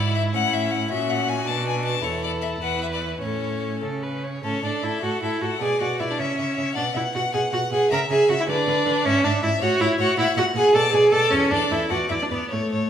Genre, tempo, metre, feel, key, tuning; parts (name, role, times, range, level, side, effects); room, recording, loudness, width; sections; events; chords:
quick classical-period movement for string quartet; 105 BPM (dotted quarters); 6/8; rubato; A major; A4 = 440 Hz
clear violin; melody; 0.0-12.9 s; A4 to A#5; -27 LUFS; left 8 dB
rich violin; second line; 0.0-12.9 s; C#4 to F#5; -28 LUFS; left 3 dB
clear viola; accompaniment; 0.0-12.9 s; A3 to C#5; -22 LUFS; right 2 dB
clear cello; bass; 0.0-12.8 s; E2 to D3; -28 LUFS; right 3 dB
wet recital hall reverb, RT60 1.5 s; minimal, uncompressed stereo recording; -20 LUFS; side -9 dB against mid
0.0-4.4 A section; 4.4-12.9 A section
0.3 A; 0.9 F#/A#; 1.5 Bm; 2.0 A5/E; 3.2 A; 4.4 A6; 5.6 Bm6; 6.2 C#m; 6.8 B5; 7.9 C#m6; 8.5 Bm/D; 9.0 E/G#; 9.6 A; 10.2 F#; 10.7 Bm; 11.3 A5; 11.9 Bmadd11/E